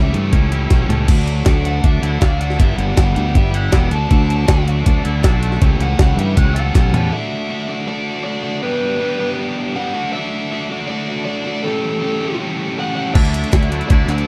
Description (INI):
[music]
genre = indie rock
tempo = 159 BPM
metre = 4/4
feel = straight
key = D major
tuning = A4 = 435 Hz
[part]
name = fuzz lead guitar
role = melody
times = 0.0-14.3 s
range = A4 to A5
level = -28 LUFS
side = equal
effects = distortion
[part]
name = biting overdriven guitar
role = riff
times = 0.0-14.3 s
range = E3 to G4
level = -24 LUFS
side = equal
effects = none
[part]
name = twangy electric guitar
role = riff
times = 0.0-7.1, 13.1-14.3 s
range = G2 to A4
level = -30 LUFS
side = equal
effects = ensemble chorus
[part]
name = fuzz fingered electric bass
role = bass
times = 0.0-7.1, 13.2-14.2 s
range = E1 to G2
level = -20 LUFS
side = equal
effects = overdrive
[part]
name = jungle sampler-style drum kit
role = drums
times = 0.1-7.0, 13.2-14.3 s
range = crash cymbal, hi-hat, kick drum, snare drum, toms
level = -17 LUFS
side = equal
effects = none
[part]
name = string machine, cellos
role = sustained chords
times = 1.1-14.3 s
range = C#4 to D6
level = -36 LUFS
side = equal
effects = none
[part]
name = group handclap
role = percussion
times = 1.5-6.8, 13.5-14.2 s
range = none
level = -36 LUFS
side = equal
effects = none
[sound]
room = little or no reverb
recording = dark, warm production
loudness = -17 LUFS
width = mono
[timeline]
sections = 0.0-7.1 A section; 7.1-14.3 B section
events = lead electric guitar solo 0.0-7.1; drum fill 0.7-1.1, 6.7-7.1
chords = 0.0 A7/C#; 1.1 Dadd9; 2.6 G6; 3.9 Dadd9; 5.6 A7/C#; 7.1 Dadd9; 8.6 G6; 9.9 Dadd9; 11.6 A7; 13.1 Dadd9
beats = 0.33 0.71 | 1.09 1.47 1.84 2.22 | 2.60 2.98 3.35 3.73 | 4.11 4.49 4.86 5.24 | 5.62 5.99 6.37 6.75 | 7.12 7.50 7.88 8.25 | 8.63 9.01 9.38 9.76 | 10.13 10.51 10.89 11.27 | 11.64 12.02 12.39 12.77 | 13.15 13.53 13.90